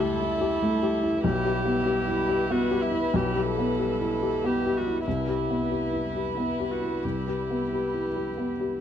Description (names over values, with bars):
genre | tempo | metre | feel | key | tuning
neoclassical piano and strings | 93 BPM | 3/4 | uneven beats, rubato | unclear | A4 = 436 Hz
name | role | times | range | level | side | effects
dark baby grand piano | accompaniment | 0.0-8.8 s | B1 to G4 | -26 LUFS | left 2 dB | none
dark viola | accompaniment | 0.0-8.8 s | E4 to A4 | -29 LUFS | right 2 dB | none
warm chamber string section | sustained chords | 0.0-8.8 s | G3 to B4 | -33 LUFS | right 1 dB | none
room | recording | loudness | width
light reverb | dark, warm production | -24 LUFS | side -9 dB against mid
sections
0.0-8.8 A section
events
none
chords
0.0 A7/C#; 1.2 Em/B; 5.1 Cmaj7